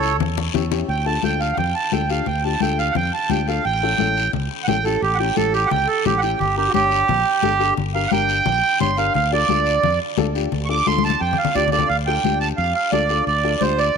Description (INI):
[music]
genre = latin, cumbia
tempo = 174 BPM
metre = 4/4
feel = straight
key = D harmonic minor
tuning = A4 = 440 Hz
[part]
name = accordion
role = melody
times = 0.0-14.0 s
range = F#4 to D6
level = -19 LUFS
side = right 5 dB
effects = none
[part]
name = dark upright piano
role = accompaniment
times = 0.0-13.9 s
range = C#4 to C#5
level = -26 LUFS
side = left 12 dB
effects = none
[part]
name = fingered electric bass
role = bass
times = 0.0-13.9 s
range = G1 to F2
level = -24 LUFS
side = equal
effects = none
[part]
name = guiro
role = percussion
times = 0.0-14.0 s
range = none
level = -32 LUFS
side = left 15 dB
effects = none
[part]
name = congas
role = percussion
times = 0.2-13.8 s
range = none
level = -26 LUFS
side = left 14 dB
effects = none
[sound]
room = moderate plate reverb, RT60 2.7 s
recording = 1960s-style stereo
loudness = -17 LUFS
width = side -6 dB against mid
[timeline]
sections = 0.9-11.9 A section; 11.9-14.0 B section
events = drum fill 0.0-0.9, 10.9-11.9; accordion solo 0.9-11.9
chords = 0.0 A7 (rootless); 0.9 Dm; 3.6 A7; 6.4 Gm; 9.1 Dm